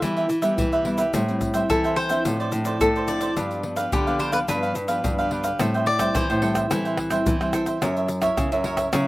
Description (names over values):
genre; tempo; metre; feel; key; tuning
samba and choro; 108 BPM; 4/4; straight; unclear; A4 = 440 Hz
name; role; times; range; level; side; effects
cavaquinho; melody; 0.0-6.4 s; G4 to E5; -25 LUFS; left 1 dB; none
cavaquinho; accompaniment; 0.0-9.1 s; D4 to G5; -26 LUFS; right 2 dB; none
nylon-string guitar; accompaniment; 0.0-9.1 s; G2 to A#4; -30 LUFS; left 1 dB; none
nylon-string guitar; bass; 0.0-9.1 s; F#2 to E3; -26 LUFS; equal; none
egg shaker, surdo, pandeiro and tamborim; percussion; 0.0-9.1 s; none; -28 LUFS; left 1 dB; none
room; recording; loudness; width
little or no reverb; recorded outdoors, with no room sound; -20 LUFS; side -18 dB against mid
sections
0.0-5.6 A section; 5.6-9.1 B section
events
cavaquinho solo 5.6-9.1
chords
0.0 Em; 1.1 Am7; 2.3 Dm7/A; 3.4 G7; 5.6 Am7; 7.8 F#7